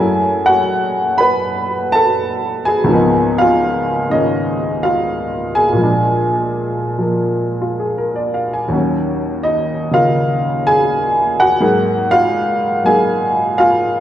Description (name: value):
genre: solo jazz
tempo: 83 BPM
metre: 4/4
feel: swing 69% on 8ths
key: Db mixolydian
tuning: A4 = 445 Hz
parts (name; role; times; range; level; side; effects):
- warm upright piano; solo; 0.0-14.0 s; Db2 to Cb6; -13 LUFS; equal; none
room: wet recital hall reverb, RT60 1.7 s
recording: recorded in a church or concert hall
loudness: -13 LUFS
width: side -11 dB against mid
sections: 0.0-14.0 A section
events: none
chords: 0.0 Gbm7; 2.9 Db13; 5.8 Bb7; 8.7 Ebm7; 11.6 Absus2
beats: 0.70 1.43 2.16 | 2.88 3.61 4.34 5.07 | 5.79 6.52 7.25 7.97 | 8.70 9.42 10.15 10.88 | 11.60 12.33 13.05 13.78